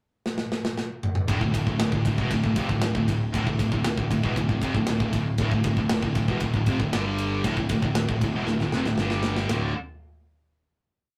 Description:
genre	heavy metal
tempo	117 BPM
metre	4/4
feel	straight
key	D minor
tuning	A4 = 440 Hz
part	tight metal drum kit	drums	0.3-9.6 s	kick drum, ride cymbal, snare drum, toms	-29 LUFS	equal	none
part	heavy high-gain guitar	riff	1.3-9.7 s	D2 to G3	-32 LUFS	equal	distortion
part	scooped high-gain guitar	riff	1.3-9.7 s	D2 to G3	-30 LUFS	equal	distortion
part	modern bright picked electric bass	bass	1.3-9.7 s	D1 to G1	-32 LUFS	equal	none
room	moderate booth ambience, RT60 0.3 s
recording	rough rehearsal-room recording, tube saturation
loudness	-25 LUFS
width	mono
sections	0.0-1.3 pickup bar; 1.3-9.5 riff; 9.5-11.2 final chord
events	drum fill 0.3-1.3, 8.5-9.5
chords	0.0 N.C.; 1.3 Dm; 6.9 G5; 7.4 Dm; 9.0 G5; 9.5 D5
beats	0.25 0.77 | 1.28 1.79 2.30 2.82 | 3.33 3.84 4.36 4.87 | 5.38 5.89 6.41 6.92 | 7.44 7.95 8.47 8.98 | 9.50

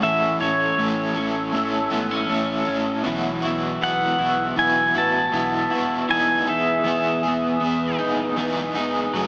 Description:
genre	dream pop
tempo	79 BPM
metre	4/4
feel	straight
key	unclear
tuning	A4 = 440 Hz
part	pedal steel guitar	melody	0.0-8.0 s	C#5 to A5	-21 LUFS	equal	analog delay
part	overdriven semi-hollow guitar	accompaniment	0.0-9.3 s	F#2 to A4	-24 LUFS	equal	tremolo, wide subtle chorus, analog delay
part	warbly tape-like pad	sustained chords	0.0-9.3 s	A3 to E6	-28 LUFS	equal	chorus, built-in reverb
part	clean electric guitar	arpeggios	0.0-9.3 s	E3 to E4	-26 LUFS	equal	lush chorus, analog delay
part	sub bass with octave	bass	0.0-9.3 s	D#1 to B1	-37 LUFS	equal	none
room	wet spring reverb, RT60 2.2 s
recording	echo-heavy mix, small speaker sound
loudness	-19 LUFS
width	side -36 dB against mid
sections	0.0-9.3 A section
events	none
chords	0.0 A; 3.1 Bsus4; 6.1 Emaj7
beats	| 0.02 0.78 1.54 2.30 | 3.06 3.82 4.58 5.34 | 6.10 6.86 7.62 8.38 | 9.14

